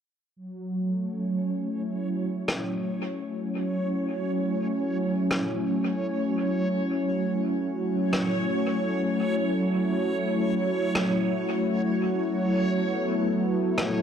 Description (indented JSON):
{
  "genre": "ambient dub",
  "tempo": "85 BPM",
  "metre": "4/4",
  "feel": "straight",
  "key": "F# minor",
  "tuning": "A4 = 440 Hz",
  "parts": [
    { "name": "warm analog pad", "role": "sustained chords", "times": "0.4-14.0 s", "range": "F#3 to F#4", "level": "-25 LUFS", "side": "equal", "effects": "chorus, tremolo" },
    { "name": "backwards swelling texture", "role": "texture", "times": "1.1-14.0 s", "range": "C#5", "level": "-33 LUFS", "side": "right 1 dB", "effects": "built-in reverb" },
    { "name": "rim click", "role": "drums", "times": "2.5-13.9 s", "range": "none", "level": "-31 LUFS", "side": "left 1 dB", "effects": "dub echo" }
  ],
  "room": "moderate spring reverb, RT60 2.2 s",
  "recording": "none",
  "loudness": "-24 LUFS",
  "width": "side -8 dB against mid",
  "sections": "0.4-14.0 A section",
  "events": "filter sweep on analog synth pad 0.4-14.0",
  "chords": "0.4 F#m7",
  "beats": "| 0.37 1.07 1.78 2.48 | 3.19 3.90 4.60 5.31 | 6.01 6.72 7.42 8.13 | 8.84 9.54 10.25 10.95 | 11.66 12.37 13.07 13.78"
}